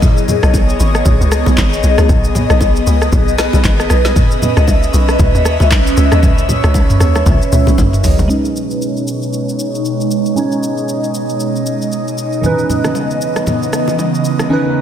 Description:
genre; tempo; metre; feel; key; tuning
amapiano; 116 BPM; 4/4; swing 58% on 16ths; B major; A4 = 440 Hz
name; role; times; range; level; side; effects
airy breathy pad; sustained chords; 0.0-14.8 s; B2 to E5; -16 LUFS; equal; chorus, phaser, sidechain pumping, low-pass filter
afro-pop drum kit; drums; 0.0-14.5 s; handclaps, hi-hat, kick drum, rim click, shaker, snare drum, toms; -16 LUFS; equal; none
congas and bongos; percussion; 0.0-8.3, 12.4-14.5 s; none; -20 LUFS; left 1 dB; none
tight log drum bass; bass; 0.4-8.3 s; F#1 to D#2; -13 LUFS; equal; none
glassy digital keys; accompaniment; 8.3-14.8 s; D#3 to C#5; -18 LUFS; right 2 dB; chorus, low-pass filter
room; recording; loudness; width
light reverb; none; -11 LUFS; side -10 dB against mid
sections
0.0-8.3 A section; 8.3-14.8 B section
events
drop 0.0-8.3; drum fill 7.3-8.3; filter sweep 8.3-14.8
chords
0.0 B69; 4.2 C#m9; 7.8 F#13; 8.3 B69; 12.4 C#m9

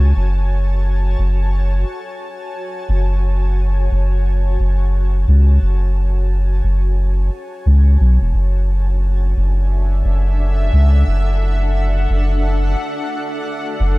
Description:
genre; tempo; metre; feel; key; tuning
ambient dub; 88 BPM; 4/4; swing 60% on 16ths; F# minor; A4 = 440 Hz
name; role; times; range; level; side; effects
granular cloud pad; sustained chords; 0.0-14.0 s; D4 to A5; -26 LUFS; left 1 dB; built-in reverb
soft dub sub bass; bass; 0.0-14.0 s; E1 to C#2; -14 LUFS; equal; none
room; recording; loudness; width
little or no reverb; none; -14 LUFS; side -21 dB against mid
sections
0.0-14.0 A section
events
fade-in on ambient pad 0.0-14.0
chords
0.0 F#m; 8.3 Dadd9/F#

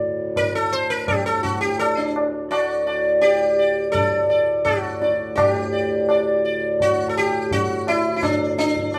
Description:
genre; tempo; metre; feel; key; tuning
indian classical, Hindustani; 84 BPM; 5/4; straight; D major; A4 = 443 Hz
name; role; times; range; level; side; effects
hand-pumped harmonium; drone; 0.0-9.0 s; D2 to A2; -31 LUFS; equal; none
sitar; melody; 0.4-9.0 s; D4 to D5; -22 LUFS; equal; none
tabla; percussion; 0.4-9.0 s; none; -27 LUFS; equal; none
room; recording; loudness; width
moderate studio reverb, RT60 0.7 s; band playing live in one room; -20 LUFS; mono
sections
0.0-5.4 A section; 5.4-9.0 B section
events
none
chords
none

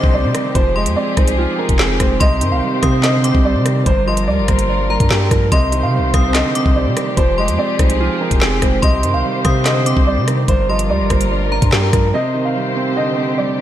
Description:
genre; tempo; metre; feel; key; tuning
hip hop, drill; 145 BPM; 4/4; half-time; C minor; A4 = 439 Hz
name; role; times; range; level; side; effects
dark grand piano; melody; 0.0-13.6 s; G4 to F5; -21 LUFS; equal; low-pass filter, ping-pong delay
metallic FM bell; second line; 0.0-11.7 s; Bb5 to Eb6; -25 LUFS; left 2 dB; chorus, ping-pong delay
felt-muted upright piano; accompaniment; 0.0-13.6 s; G2 to F4; -21 LUFS; right 4 dB; low-pass filter
muted studio string section; sustained chords; 0.0-13.6 s; F3 to C5; -22 LUFS; left 1 dB; none
long sustained 808-style bass; bass; 0.0-12.1 s; F1 to C3; -18 LUFS; equal; none
drill drum kit; drums; 0.0-12.0 s; handclaps, hi-hat, kick drum, rim click, snare drum; -17 LUFS; equal; none
downlifter; sound effects; 0.0-2.2 s; none; -39 LUFS; left 2 dB; none
room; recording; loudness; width
moderate lush hall reverb, RT60 2.0 s, small room reverb; dreamy mix soaked in reverb; -13 LUFS; side -12 dB against mid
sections
0.0-12.1 A section; 12.1-13.6 A section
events
none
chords
0.0 Cmadd9; 0.6 Fm7; 2.2 Cmadd9; 3.9 Gm7; 5.5 Cmadd9; 7.2 Fm7; 8.8 Cmadd9; 10.5 Gm7; 12.1 Cmadd9

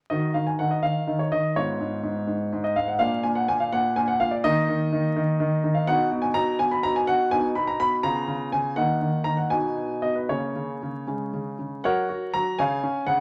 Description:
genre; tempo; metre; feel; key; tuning
classical-period piano sonatina; 83 BPM (dotted quarters); 6/8; rubato; Eb minor, F# major from 5.9 s; A4 = 439 Hz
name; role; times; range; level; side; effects
warm baby grand piano; solo; 0.1-13.2 s; Ab2 to B5; -24 LUFS; equal; none
room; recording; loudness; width
moderate large studio reverb, RT60 1.0 s; vinyl crackle; -25 LUFS; mono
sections
0.1-11.8 A section; 11.8-13.2 B section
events
none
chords
0.1 Ebm; 1.6 Fdim/Ab; 3.0 Bb; 4.4 Eb5; 5.9 B; 8.0 C#7; 8.8 D#m; 9.5 G#m/B; 10.3 A#m/C#; 11.1 C#5; 11.8 F#; 12.6 C#

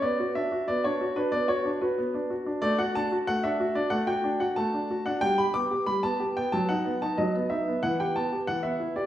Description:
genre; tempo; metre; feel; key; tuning
classical-period piano sonatina; 92 BPM; 4/4; straight; unclear; A4 = 440 Hz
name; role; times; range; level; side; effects
clear baby grand piano; solo; 0.0-9.1 s; E3 to D6; -25 LUFS; equal; none
room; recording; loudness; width
wet recital hall reverb, RT60 1.3 s; heard from further back in the room; -25 LUFS; side -12 dB against mid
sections
0.0-9.1 A section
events
none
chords
0.0 Bm; 2.6 D/A; 5.2 G; 6.5 B/F#; 7.8 Em

